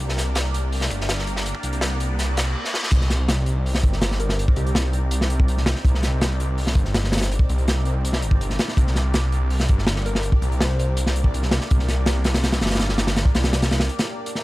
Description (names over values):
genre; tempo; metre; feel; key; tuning
drum and bass, jungle; 164 BPM; 4/4; straight; C minor; A4 = 438 Hz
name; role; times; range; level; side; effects
detuned saw bass; bass; 0.0-13.9 s; G1 to C2; -22 LUFS; equal; none
riser and reverse cymbal; sound effects; 0.0-2.9 s; none; -33 LUFS; equal; none
crunchy breakbeat drum kit; drums; 0.1-14.4 s; crash cymbal, hi-hat, kick drum, snare drum; -22 LUFS; equal; high-pass filter on kick, high-pass filter on hats, high-pass filter on cymbals, high-pass filter on snare, high-pass filter on room
soft struck synth lead; melody; 4.2-4.7, 10.1-11.1 s; G4 to C5; -34 LUFS; left 2 dB; chorus, dub echo
room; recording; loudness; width
small room reverb; vinyl crackle; -19 LUFS; side -18 dB against mid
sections
0.0-2.9 A section; 2.9-14.4 B section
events
build-up 0.0-2.9; riser 0.0-2.6; reverse cymbal 2.2-2.9; drum fill 2.6; drop 2.9-14.4; break 13.9-14.4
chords
0.0 Gm; 2.9 Cm9; 8.8 Gm